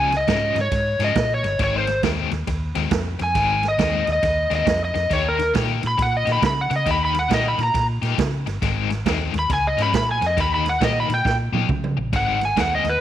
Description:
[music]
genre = electric blues shuffle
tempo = 137 BPM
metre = 4/4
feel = swing 64% on 8ths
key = Ab major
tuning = A4 = 440 Hz
[part]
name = overdriven slide guitar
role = melody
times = 0.0-13.0 s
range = Bb4 to Cb6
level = -21 LUFS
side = equal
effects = none
[part]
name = biting overdriven guitar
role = riff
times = 0.0-12.9 s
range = Ab2 to G4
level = -27 LUFS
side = left 11 dB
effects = tremolo
[part]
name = vintage muted fingered electric bass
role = bass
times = 0.0-13.0 s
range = G1 to Db3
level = -25 LUFS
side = equal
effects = none
[part]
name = swinging big-band drum kit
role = drums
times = 0.1-12.9 s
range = kick drum, ride cymbal, snare drum, toms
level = -25 LUFS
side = right 4 dB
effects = none
[sound]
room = light reverb, studio ambience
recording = 1960s-style stereo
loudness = -18 LUFS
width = side -11 dB against mid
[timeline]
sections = 0.0-12.1 A section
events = electric slide guitar solo 0.0-12.1; drum fill 11.2-12.1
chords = 0.0 Db; 1.6 Ab; 5.1 Eb; 8.6 Ab; 9.5 Db; 10.4 Eb; 12.1 Ab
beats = 0.28 0.72 1.16 | 1.60 2.04 2.48 2.91 | 3.35 3.79 4.23 4.67 | 5.11 5.55 5.99 6.43 | 6.86 7.30 7.74 8.18 | 8.62 9.06 9.50 9.94 | 10.37 10.81 11.25 11.69 | 12.13 12.57 13.01

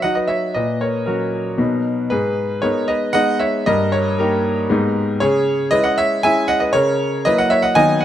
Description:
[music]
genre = classical-period piano sonatina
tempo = 116 BPM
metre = 3/4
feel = rubato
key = unclear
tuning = A4 = 438 Hz
[part]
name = warm grand piano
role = solo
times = 0.0-8.0 s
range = G2 to G#5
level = -15 LUFS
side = equal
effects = none
[sound]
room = light reverb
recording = close, detailed microphones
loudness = -15 LUFS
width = side -11 dB against mid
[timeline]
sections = 0.0-8.0 A section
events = none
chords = 0.0 B; 0.6 F#/A#; 1.6 B; 2.1 G#m; 3.7 D#/G; 4.7 G#m; 5.2 C#m; 6.7 F#7/C#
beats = 0.03 | 0.56 1.07 1.59 | 2.12 2.63 3.15 | 3.68 4.20 4.70 | 5.21 5.71 6.22 | 6.74 7.25 7.77

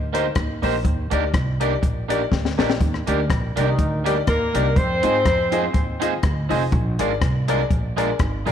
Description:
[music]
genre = ska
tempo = 122 BPM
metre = 4/4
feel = swing 55% on 8ths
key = unclear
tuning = A4 = 439 Hz
[part]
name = upright bass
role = bass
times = 0.0-8.5 s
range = F1 to Ab2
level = -24 LUFS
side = right 1 dB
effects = none
[part]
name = electric guitar at the edge of break-up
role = accompaniment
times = 0.1-8.5 s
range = Ab3 to C5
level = -26 LUFS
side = right 11 dB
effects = none
[part]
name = clear upright piano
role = stabs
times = 0.1-8.5 s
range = Eb4 to Eb5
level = -26 LUFS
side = left 11 dB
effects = none
[part]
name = compact cocktail drum kit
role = drums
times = 0.1-8.5 s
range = hi-hat, kick drum, rim click, snare drum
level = -23 LUFS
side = left 2 dB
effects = none
[part]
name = warm horn section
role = melody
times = 3.6-6.2 s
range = Eb3 to C5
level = -22 LUFS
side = left 1 dB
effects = none
[sound]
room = light reverb, studio ambience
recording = 1960s-style stereo with parts hard left and right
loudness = -18 LUFS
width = side -9 dB against mid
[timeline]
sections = 0.0-8.5 A section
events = drum fill 2.3-2.8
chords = 0.0 Cm7; 4.8 Fm7; 6.7 Bb7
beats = 0.36 | 0.85 1.34 1.83 2.31 | 2.81 3.29 3.78 4.27 | 4.76 5.25 5.74 6.23 | 6.72 7.21 7.71 8.20

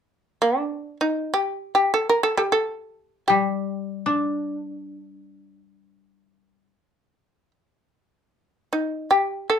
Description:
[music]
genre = japanese traditional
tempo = free time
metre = none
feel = none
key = unclear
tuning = A4 = 441 Hz
[part]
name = shamisen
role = melody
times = 0.4-9.6 s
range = D4 to Bb4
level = -20 LUFS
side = equal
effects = none
[part]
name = koto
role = accompaniment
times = 3.3-7.1 s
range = G3 to D4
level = -25 LUFS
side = left 3 dB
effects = none
[sound]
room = wet small room reverb, RT60 0.5 s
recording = dark, warm production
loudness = -21 LUFS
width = side -8 dB against mid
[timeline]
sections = 0.0-9.6 A section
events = none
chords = none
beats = free time

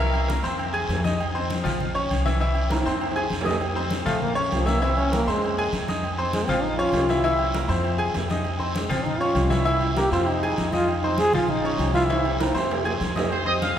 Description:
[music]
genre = latin, salsa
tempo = 198 BPM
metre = 4/4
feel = straight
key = F minor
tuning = A4 = 440 Hz
[part]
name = bright grand piano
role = accompaniment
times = 0.0-13.7 s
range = E3 to Ab6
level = -26 LUFS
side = left 1 dB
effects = none
[part]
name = upright bass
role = bass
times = 0.0-13.8 s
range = Bb1 to F2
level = -27 LUFS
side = equal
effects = none
[part]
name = agogo bells and timbales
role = percussion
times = 0.1-13.8 s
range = none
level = -31 LUFS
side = right 3 dB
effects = none
[part]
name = congas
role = percussion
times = 0.1-13.8 s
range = none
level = -31 LUFS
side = left 1 dB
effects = none
[part]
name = guiro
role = percussion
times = 0.3-13.8 s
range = none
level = -38 LUFS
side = right 3 dB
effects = none
[part]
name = clear trombone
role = melody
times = 4.1-12.0 s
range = Db3 to Ab4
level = -25 LUFS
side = equal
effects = none
[part]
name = bright trumpet section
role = melody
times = 13.3-13.8 s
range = C5 to Eb6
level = -24 LUFS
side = equal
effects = none
[sound]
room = wet church reverb, RT60 3.4 s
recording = recorded in a church or concert hall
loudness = -21 LUFS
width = side -10 dB against mid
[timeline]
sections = 0.0-3.6 A section; 3.6-13.3 B section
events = drum fill 2.7-3.6, 12.1-13.3; trombone solo 3.6-13.3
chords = 0.0 C7; 0.6 Fm7; 1.8 Bbm; 2.4 C7; 3.0 Fm7; 3.6 F5; 4.2 Bbm; 4.8 C7; 5.4 Fm7; 6.6 Bbm; 7.2 C7; 7.8 Fm7; 9.1 Bbm; 9.7 C7; 10.3 Fm7; 11.5 Bbm; 12.1 C7; 12.7 Fm7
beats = 0.29 0.59 0.90 | 1.20 1.50 1.80 2.10 | 2.41 2.71 3.01 3.31 | 3.62 3.92 4.22 4.52 | 4.82 5.12 5.43 5.73 | 6.03 6.33 6.63 6.94 | 7.24 7.54 7.84 8.15 | 8.45 8.75 9.06 9.36 | 9.66 9.97 10.27 10.58 | 10.88 11.19 11.49 11.79 | 12.10 12.40 12.71 13.01 | 13.32 13.62

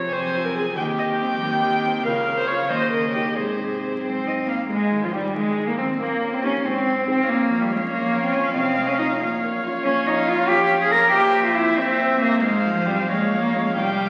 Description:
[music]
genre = quick classical-period movement for piano quartet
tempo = 93 BPM (dotted quarters)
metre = 6/8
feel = straight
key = Ab major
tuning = A4 = 440 Hz
[part]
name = warm cello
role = second line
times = 0.0-14.1 s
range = C3 to Bb4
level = -24 LUFS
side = equal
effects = none
[part]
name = dark viola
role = accompaniment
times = 0.0-14.1 s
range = F3 to F5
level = -29 LUFS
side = equal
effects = none
[part]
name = warm grand piano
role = accompaniment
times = 0.0-14.1 s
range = Bb1 to Bb4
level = -30 LUFS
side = equal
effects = none
[part]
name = warm violin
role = melody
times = 0.1-14.1 s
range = G3 to Ab5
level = -29 LUFS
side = equal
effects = none
[sound]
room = wet scoring stage reverb, RT60 1.6 s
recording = very old 78 rpm record, vinyl crackle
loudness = -21 LUFS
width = mono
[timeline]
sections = 0.0-4.7 A section; 4.7-14.1 B section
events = none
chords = 0.0 Fm; 0.8 Cm/Eb; 2.1 Bbm/Db; 2.7 Eb7; 3.4 Ab; 4.7 Ab5; 6.0 Eb7/Bb; 6.7 Ab; 7.3 Bbm; 8.6 F7/C; 9.2 Bbm; 11.1 C7/Bb; 12.4 Fm/Ab; 13.1 Bbm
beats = 0.13 | 0.78 1.42 | 2.06 2.70 | 3.36 4.03 | 4.70 5.35 | 6.01 6.65 | 7.29 7.93 | 8.56 9.20 | 9.84 10.49 | 11.13 11.78 | 12.43 13.09 | 13.77

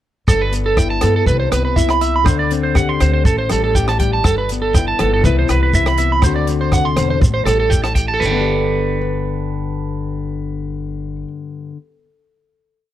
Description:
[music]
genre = highlife guitar band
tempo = 121 BPM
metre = 4/4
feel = straight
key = G major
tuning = A4 = 442 Hz
[part]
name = nylon-string guitar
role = accompaniment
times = 0.3-12.1 s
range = G2 to B4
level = -21 LUFS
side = left 7 dB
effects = none
[part]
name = electric guitar at the edge of break-up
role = arpeggios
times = 0.3-11.3 s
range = A4 to C6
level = -18 LUFS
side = right 4 dB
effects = phaser, tape echo, plate reverb
[part]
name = upright bass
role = bass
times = 0.3-11.2 s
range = G1 to G2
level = -20 LUFS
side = equal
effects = none
[part]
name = compact cocktail drum kit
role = drums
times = 0.3-8.1 s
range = hi-hat, kick drum, rim click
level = -19 LUFS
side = equal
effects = none
[part]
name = shekere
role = percussion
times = 0.3-8.4 s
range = none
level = -20 LUFS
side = right 1 dB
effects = none
[sound]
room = light reverb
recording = none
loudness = -14 LUFS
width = side -12 dB against mid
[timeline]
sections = 0.3-8.2 groove; 8.2-12.1 final chord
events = none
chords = 0.3 Gadd9; 1.3 Cmaj7; 2.3 D7; 3.3 A7(no3); 4.2 Gadd9; 5.2 Cmaj7; 6.2 D7; 7.2 A7(no3); 8.2 Gadd9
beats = | 0.29 0.78 1.28 1.77 | 2.27 2.76 3.26 3.75 | 4.25 4.75 5.24 5.74 | 6.23 6.72 7.22 7.71 | 8.21 8.70 9.19 9.68 | 10.17 10.66 11.16 11.65

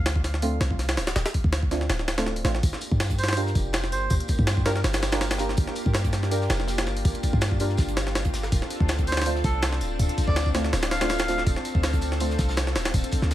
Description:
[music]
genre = drum and bass, jungle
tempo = 163 BPM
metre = 4/4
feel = swing 53% on 16ths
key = G minor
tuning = A4 = 440 Hz
[part]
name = warm 808-style bass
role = bass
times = 0.0-13.3 s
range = D1 to G2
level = -26 LUFS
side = equal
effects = none
[part]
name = jungle sampler-style drum kit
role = drums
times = 0.1-13.3 s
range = hi-hat, kick drum, snare drum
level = -25 LUFS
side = equal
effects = studio reverb
[part]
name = deep mellow chord stab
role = stabs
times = 0.4-13.3 s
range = A3 to Bb4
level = -32 LUFS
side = right 2 dB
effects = chorus, dub echo
[part]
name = lush unison pad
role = sustained chords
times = 2.6-13.3 s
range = Bb3 to A4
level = -33 LUFS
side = left 1 dB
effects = chorus, vintage 12-bit sampler grit
[part]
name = damped 70s drum kit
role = drums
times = 2.6-13.3 s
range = hi-hat, snare drum, tambourine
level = -39 LUFS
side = left 2 dB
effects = high-pass filter on hats, studio reverb, high-pass filter on snare, high-pass filter on perc, high-pass filter on room
[part]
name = melodica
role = melody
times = 3.2-4.8, 9.1-11.4 s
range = A4 to F5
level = -33 LUFS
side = right 1 dB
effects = vintage 12-bit sampler grit, dub echo
[sound]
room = studio ambience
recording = vinyl crackle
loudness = -22 LUFS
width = side -13 dB against mid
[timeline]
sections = 0.0-13.3 A section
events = none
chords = 0.0 Dm7; 2.6 Gm7; 8.5 Dm7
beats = 0.06 0.42 0.79 | 1.16 1.53 1.90 2.26 | 2.63 3.00 3.37 3.74 | 4.10 4.47 4.84 5.21 | 5.58 5.94 6.31 6.68 | 7.05 7.42 7.79 8.15 | 8.52 8.89 9.26 9.62 | 9.99 10.36 10.73 11.10 | 11.47 11.83 12.20 12.57 | 12.94 13.31

